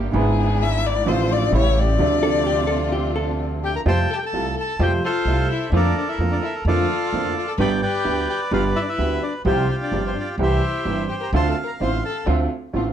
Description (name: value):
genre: tango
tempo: 128 BPM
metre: 4/4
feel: rubato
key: D minor, F major from 3.9 s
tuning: A4 = 440 Hz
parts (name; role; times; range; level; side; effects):
- bright upright piano; accompaniment; 0.0-12.9 s; G1 to G4; -24 LUFS; right 3 dB; none
- warm studio string section; stabs; 0.0-3.8, 11.3-12.9 s; G#3 to G4; -29 LUFS; right 2 dB; none
- upright bass; bass; 0.0-12.9 s; G1 to F2; -23 LUFS; equal; none
- warm violin; second line; 0.1-12.3 s; C4 to E5; -26 LUFS; left 8 dB; none
- hollow-body jazz guitar; second line; 2.2-3.8 s; G4 to A4; -27 LUFS; right 1 dB; none
- bandoneon; melody; 3.7-12.3 s; F4 to C6; -25 LUFS; right 1 dB; none
room: light reverb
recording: dark, warm production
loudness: -18 LUFS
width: side -9 dB against mid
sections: 0.0-3.9 A section; 3.9-12.9 B section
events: violin solo 0.0-3.9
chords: 0.1 E7/G#; 1.1 Dm/A; 1.5 A7; 2.0 Dm7; 3.9 Fadd9; 5.7 Bbmaj7/F; 7.6 G; 9.5 Csus4; 10.4 C; 11.3 Dm7